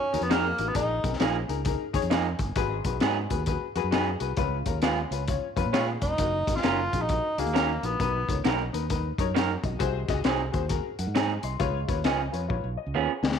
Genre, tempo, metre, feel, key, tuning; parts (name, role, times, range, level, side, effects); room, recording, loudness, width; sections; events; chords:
uptempo 1960s-style soul; 133 BPM; 4/4; swing 64% on 8ths; A4 = 438 Hz
warm tenor saxophone; melody; 0.0-1.2, 5.7-8.5 s; A#3 to E#4; -28 LUFS; equal
warm upright piano; accompaniment; 0.0-13.4 s; G#2 to B#5; -32 LUFS; left 12 dB
fingered electric bass; bass; 0.1-13.4 s; E#1 to A#2; -31 LUFS; right 2 dB
crunchy breakbeat drum kit; drums; 0.1-13.4 s; hi-hat, kick drum, snare drum; -29 LUFS; left 3 dB
electric guitar through a small old amp; stabs; 0.3-13.1 s; E#3 to A#4; -29 LUFS; right 13 dB
light reverb, small room ambience; 1960s-style stereo with parts hard left and right; -24 LUFS; side -7 dB against mid
0.0-13.4 A section
drum fill 12.5-13.4
0.0 F#6; 0.8 A#7sus4; 2.6 G#m7; 4.4 C#7; 6.2 F#6; 8.0 Bmaj7; 9.8 G#7/B#; 11.6 C#7